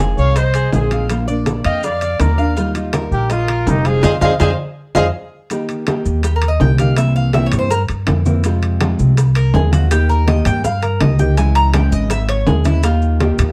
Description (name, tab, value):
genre	latin, Cuban son and guajira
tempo	164 BPM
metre	4/4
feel	straight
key	unclear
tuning	A4 = 440 Hz
part	nylon-string guitar	accompaniment	0.0-13.5 s	C3 to G4	-24 LUFS	equal	none
part	Cuban tres	arpeggios	0.0-13.5 s	Fb4 to Bb5	-24 LUFS	equal	none
part	upright bass	bass	0.0-13.5 s	F1 to G2	-18 LUFS	equal	none
part	congas	percussion	0.0-13.5 s	none	-24 LUFS	equal	none
part	warm trumpet	melody	0.2-5.0 s	Eb4 to Eb5	-22 LUFS	equal	none
part	warm chamber violin section	second line	0.2-5.1 s	G4 to G5	-30 LUFS	equal	none
part	bongos	percussion	0.2-13.5 s	none	-29 LUFS	equal	none
part	maracas	percussion	0.2-13.5 s	none	-38 LUFS	equal	none
part	timbales	percussion	0.4-13.5 s	none	-26 LUFS	equal	none
room	light reverb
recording	dark, warm production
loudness	-16 LUFS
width	mono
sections	0.0-5.5 A section; 5.5-13.5 B section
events	band accent 4.0-5.5; drum fill 4.4-5.5; Cuban tres solo 5.5-13.5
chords	0.0 Fm7; 1.1 Bb; 2.6 Ebadd9; 4.0 Fm7; 5.5 Eb; 7.0 C7; 8.4 Fm; 9.9 Eb; 11.4 Dbm; 12.8 Eb